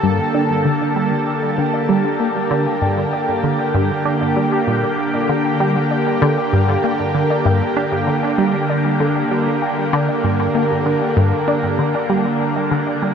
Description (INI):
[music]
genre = ambient, sequencer-driven space music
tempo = 97 BPM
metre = 4/4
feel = straight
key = G minor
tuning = A4 = 440 Hz
[part]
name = lush unison pad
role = sustained chords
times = 0.0-13.1 s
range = D3 to A4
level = -18 LUFS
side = equal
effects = chorus, phaser
[part]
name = warbly dusty pluck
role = arpeggios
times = 0.0-13.1 s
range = G3 to G5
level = -30 LUFS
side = moving between left 6 dB and right 1 dB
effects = none
[part]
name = tight sequenced synth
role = riff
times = 0.0-13.1 s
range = G2 to D4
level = -20 LUFS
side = equal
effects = chorus, phaser, analog delay
[sound]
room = wet shimmer reverb, RT60 8.6 s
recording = none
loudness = -15 LUFS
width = side -7 dB against mid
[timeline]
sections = 0.0-13.1 A section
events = none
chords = 0.0 Gmadd9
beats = | 0.34 0.96 1.58 2.20 | 2.82 3.44 4.05 4.67 | 5.29 5.91 6.53 7.15 | 7.77 8.38 9.00 9.62 | 10.24 10.86 11.48 12.10 | 12.71